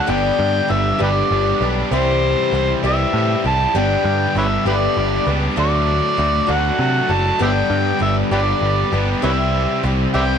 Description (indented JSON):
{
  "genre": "folk rock and heartland rock",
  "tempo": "66 BPM (dotted quarters)",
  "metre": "6/8",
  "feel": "straight",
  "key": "unclear",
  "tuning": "A4 = 440 Hz",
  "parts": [
    { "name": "overdriven harmonica", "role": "melody", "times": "0.0-10.4 s", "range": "G4 to A5", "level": "-20 LUFS", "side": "right 1 dB", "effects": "none" },
    { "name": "picked swing-style acoustic guitar", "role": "accompaniment", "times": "0.0-10.4 s", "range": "G2 to G4", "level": "-23 LUFS", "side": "left 12 dB", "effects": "none" },
    { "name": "bright tonewheel organ", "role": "sustained chords", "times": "0.0-10.4 s", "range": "A3 to C5", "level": "-32 LUFS", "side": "right 1 dB", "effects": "none" },
    { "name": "cranked stack guitar", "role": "riff", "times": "0.0-10.4 s", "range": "G2 to G4", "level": "-22 LUFS", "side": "right 1 dB", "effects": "overdrive" },
    { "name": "barky reed electric piano", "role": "accompaniment", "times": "0.1-10.4 s", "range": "F#4 to G5", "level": "-29 LUFS", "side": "right 10 dB", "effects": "overdrive" },
    { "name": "picked electric bass", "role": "bass", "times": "0.1-10.4 s", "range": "F#1 to C3", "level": "-20 LUFS", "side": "right 1 dB", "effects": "none" }
  ],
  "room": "light reverb, small room ambience",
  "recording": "1960s-style stereo with parts hard left and right",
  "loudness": "-15 LUFS",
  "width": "side -7 dB against mid",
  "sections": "0.0-10.4 A section",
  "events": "none",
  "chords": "0.1 G; 1.9 C; 3.7 G; 5.6 D; 7.4 G; 9.2 C"
}